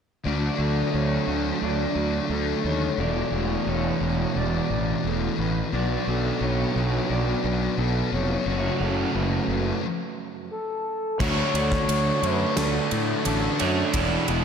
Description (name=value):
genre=rock, shoegaze and dream pop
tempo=88 BPM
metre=4/4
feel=straight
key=D lydian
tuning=A4 = 438 Hz
part: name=overdriven semi-hollow guitar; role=riff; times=0.2-14.4 s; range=E2 to G#4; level=-29 LUFS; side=right 9 dB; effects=reverse reverb
part: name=thick fuzz guitar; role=riff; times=0.2-14.4 s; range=E2 to D4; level=-28 LUFS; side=left 9 dB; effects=distortion, ensemble chorus
part: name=electric guitar through a small old amp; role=arpeggios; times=0.3-14.4 s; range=A3 to A5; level=-32 LUFS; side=equal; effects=wide subtle chorus, diffuse ambient delay
part: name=fuzz fingered electric bass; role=bass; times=0.3-14.4 s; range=E1 to A2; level=-27 LUFS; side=equal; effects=overdrive
part: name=reedy FM lead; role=melody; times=10.5-13.3 s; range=A4 to C#5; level=-29 LUFS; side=left 2 dB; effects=chorus, diffuse ambient delay
part: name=sludgy distorted guitar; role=riff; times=11.2-14.4 s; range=D3 to E4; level=-29 LUFS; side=right 1 dB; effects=overdrive
part: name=gated 80s drum kit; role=drums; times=11.2-14.4 s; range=crash cymbal, kick drum, ride cymbal, snare drum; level=-30 LUFS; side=equal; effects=none
room=moderate plate reverb, RT60 3.0 s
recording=dreamy mix soaked in reverb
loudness=-22 LUFS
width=side -7 dB against mid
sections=0.2-11.2 A section; 11.2-14.4 B section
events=stop 9.8-11.2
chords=0.2 Dmaj7; 3.0 E7sus4; 5.7 Bm7; 8.5 F#m; 11.2 Dmaj7; 13.9 E7sus4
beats=| 0.25 0.93 1.62 2.30 | 2.99 3.67 4.36 5.04 | 5.73 6.41 7.10 7.78 | 8.47 9.15 9.84 10.52 | 11.21 11.89 12.58 13.26 | 13.95